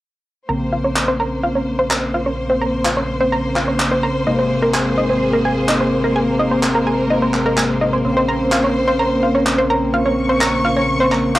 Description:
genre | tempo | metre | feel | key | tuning
melodic techno | 127 BPM | 4/4 | straight | Bb minor | A4 = 440 Hz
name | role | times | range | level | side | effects
clear studio string section | sustained chords | 0.5-11.4 s | Bb3 to Db6 | -22 LUFS | equal | none
analog pluck | arpeggios | 0.5-11.4 s | Bb4 to Bb5 | -19 LUFS | equal | chorus, analog delay
sync-sweep polysynth | stabs | 0.5-11.4 s | C3 to C4 | -19 LUFS | equal | chorus, analog delay
round analog bass | bass | 0.5-11.4 s | Ab1 to Bb1 | -29 LUFS | equal | none
electronic handclaps | drums | 1.0-11.4 s | none | -21 LUFS | equal | cassette tape
room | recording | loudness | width
moderate spring reverb, RT60 1.5 s | home recording on cassette | -15 LUFS | side -16 dB against mid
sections
0.5-11.4 A section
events
filter sweep on synth arpeggio sound 0.5-11.4; filter sweep on analog polysynth 0.5-11.4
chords
0.5 Bbmadd9; 4.3 Abadd9; 8.0 Bbmadd9

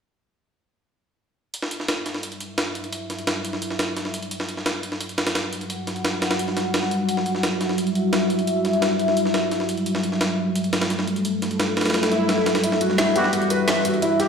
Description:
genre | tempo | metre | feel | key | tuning
dark technical drum and bass | 173 BPM | 4/4 | straight | E minor | A4 = 440 Hz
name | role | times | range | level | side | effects
deep dark ambient pad | sustained chords | 2.4-14.3 s | G3 to F#5 | -23 LUFS | left 1 dB | chorus, built-in reverb
breakbeat sampler-style drum kit | drums | 1.5-14.3 s | hi-hat, snare drum | -25 LUFS | right 1 dB | high-pass filter on hats, studio reverb, high-pass filter on snare
swell | sound effects | 12.0-12.6 s | none | -27 LUFS | equal | none
felt-muted upright piano | arpeggios | 12.6-14.3 s | E4 to B4 | -21 LUFS | equal | dub echo
drum and bass drum kit | drums | 12.6-14.3 s | hi-hat, snare drum | -26 LUFS | right 1 dB | overdrive, low-pass filter on hats, studio reverb, low-pass filter on snare
mellow brass ensemble | stabs | 13.2-13.3 s | G3 to F#4 | -26 LUFS | right 2 dB | dub echo
room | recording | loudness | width
wet lush hall reverb, RT60 2.0 s | played on a big sound system in a bare room, large studio reverb | -20 LUFS | side -6 dB against mid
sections
1.5-14.3 A section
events
filter sweep on ambient pad 1.5-14.3; swell 12.0-12.6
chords
1.5 Emadd9

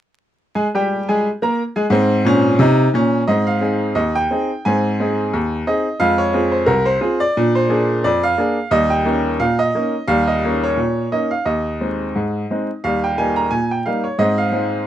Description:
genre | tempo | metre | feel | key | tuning
ragtime piano | 88 BPM | 2/4 | swing 56% on 16ths | Ab major | A4 = 442 Hz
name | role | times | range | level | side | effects
bright upright piano | solo | 0.6-14.9 s | C2 to Bb5 | -15 LUFS | equal | none
room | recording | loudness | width
little or no reverb | dry, close 1970s-style studio recording, vinyl crackle | -15 LUFS | side -11 dB against mid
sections
0.6-3.3 A section; 3.3-14.9 B section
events
none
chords
0.6 Ab; 6.0 Fm; 7.4 Bb7; 8.7 Eb7; 11.4 Ab/Eb; 12.8 Eb; 14.2 Ab

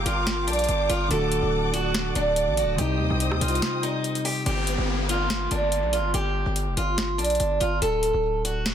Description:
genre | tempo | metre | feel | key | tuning
hip hop, trap | 143 BPM | 4/4 | half-time | G minor | A4 = 442 Hz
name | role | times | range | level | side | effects
picked acoustic archtop guitar | melody | 0.0-8.7 s | D4 to A4 | -25 LUFS | right 2 dB | low-pass filter, digital delay
soft electric-piano-like synth keys | accompaniment | 0.0-4.5 s | C3 to Bb4 | -29 LUFS | equal | chorus, low-pass filter
warm symphonic string section | sustained chords | 0.0-4.4 s | A4 to Eb6 | -31 LUFS | left 3 dB | none
distorted 808-style bass | bass | 0.0-8.7 s | D1 to Eb2 | -27 LUFS | equal | distortion
booming analog drum machine | drums | 0.1-8.7 s | hi-hat, rim click, snare drum | -30 LUFS | left 1 dB | none
downlifter | sound effects | 4.5-7.8 s | none | -32 LUFS | left 1 dB | none
room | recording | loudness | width
little or no reverb | dense, heavily limited modern master | -22 LUFS | side -9 dB against mid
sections
0.0-4.5 A section; 4.5-8.7 B section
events
break 3.6-4.5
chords
0.0 Gm7; 1.1 D; 2.8 Cm; 4.5 G7(no3); 7.8 D

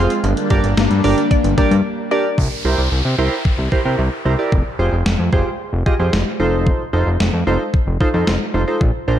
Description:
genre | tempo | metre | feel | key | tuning
synth-pop | 112 BPM | 4/4 | straight | unclear | A4 = 439 Hz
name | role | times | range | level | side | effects
warm analog keys | accompaniment | 0.0-9.2 s | D4 to F5 | -20 LUFS | right 2 dB | chorus
phased analog pad | sustained chords | 0.0-2.4 s | G3 to F4 | -22 LUFS | left 1 dB | phaser, chorus
resonant blip pluck | arpeggios | 0.0-2.3 s | D3 to D5 | -25 LUFS | left 4 dB | phaser, analog delay
fat analog bass | bass | 0.0-9.2 s | F1 to C3 | -17 LUFS | equal | none
clean 12-bit digital drum machine | drums | 0.1-8.9 s | hi-hat, kick drum, snare drum | -19 LUFS | equal | none
downlifter | sound effects | 2.4-6.7 s | none | -28 LUFS | equal | none
room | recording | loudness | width
light reverb, digital ambience | dark, warm production | -15 LUFS | side -11 dB against mid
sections
0.0-2.4 A section; 2.4-9.2 B section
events
break 1.8-2.4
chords
0.2 Gm; 2.4 C7; 4.5 Fmadd9; 6.4 F7

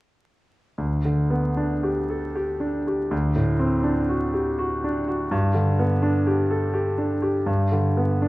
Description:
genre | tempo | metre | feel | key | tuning
classical, romantic character piece for solo piano | 73-85 BPM | 3/4 | rubato | G major | A4 = 440 Hz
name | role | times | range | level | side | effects
bright concert grand piano | solo | 0.8-8.3 s | D2 to A4 | -20 LUFS | equal | none
room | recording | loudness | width
wet recital hall reverb, RT60 1.4 s | vinyl crackle | -21 LUFS | side -18 dB against mid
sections
0.8-8.3 A section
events
none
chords
0.8 G/D; 3.1 D7; 5.3 G

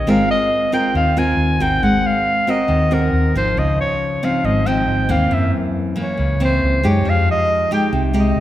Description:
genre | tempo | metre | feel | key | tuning
bossa nova | 137 BPM | 4/4 | straight | Ab major | A4 = 440 Hz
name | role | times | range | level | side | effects
breathy clarinet | melody | 0.0-8.4 s | Bb4 to Ab5 | -19 LUFS | equal | none
nylon-string guitar | accompaniment | 0.0-8.4 s | Gb2 to Bb4 | -19 LUFS | equal | none
fingered electric bass | bass | 0.0-8.4 s | Ab1 to Gb2 | -20 LUFS | equal | none
room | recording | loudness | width
wet concert hall reverb, RT60 1.7 s | recorded in a church or concert hall | -15 LUFS | side -13 dB against mid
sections
0.1-8.4 A section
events
none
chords
0.1 Ab69; 3.6 Dbmaj9; 5.3 Gb7#11; 7.1 Fm9

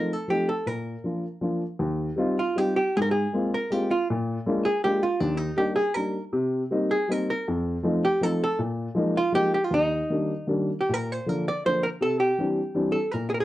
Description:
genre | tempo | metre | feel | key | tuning
musette waltz | 159 BPM | 3/4 | rubato | Eb major | A4 = 437 Hz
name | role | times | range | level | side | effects
archtop guitar, miked and amplified | melody | 0.0-13.4 s | D4 to D5 | -25 LUFS | right 1 dB | none
dark upright piano | accompaniment | 0.0-13.4 s | Eb2 to F4 | -26 LUFS | left 1 dB | none
room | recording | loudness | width
moderate studio reverb, RT60 0.5 s | worn, warbling old tape, cassette tape, warbly pitch drift | -23 LUFS | side -15 dB against mid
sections
0.0-1.8 A section; 1.8-10.9 B section; 10.9-13.4 A section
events
none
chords
0.0 F7; 0.7 Bb; 1.8 Eb69; 2.9 Ab69; 4.1 Bb7; 5.2 Ebmaj7; 6.3 Cm7; 7.5 F7; 8.6 Bb7sus4; 9.7 Ebmaj7; 10.9 Bb; 12.0 Cadd9

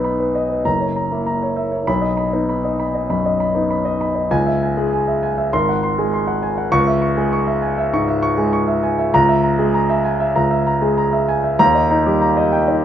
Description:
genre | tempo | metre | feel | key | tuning
classical, virtuoso piano study | 99 BPM | 4/4 | rubato | unclear | A4 = 440 Hz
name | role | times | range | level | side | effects
warm grand piano | solo | 0.0-12.8 s | F#1 to C#6 | -15 LUFS | equal | none
room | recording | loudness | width
moderate large studio reverb, RT60 1.2 s | heard from further back in the room | -15 LUFS | side -10 dB against mid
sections
0.0-12.8 A section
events
none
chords
0.0 B; 0.7 F#7; 1.9 B; 4.3 C#m; 5.5 G#7; 6.7 C#m; 9.1 A#m7b5/C#; 11.6 D#

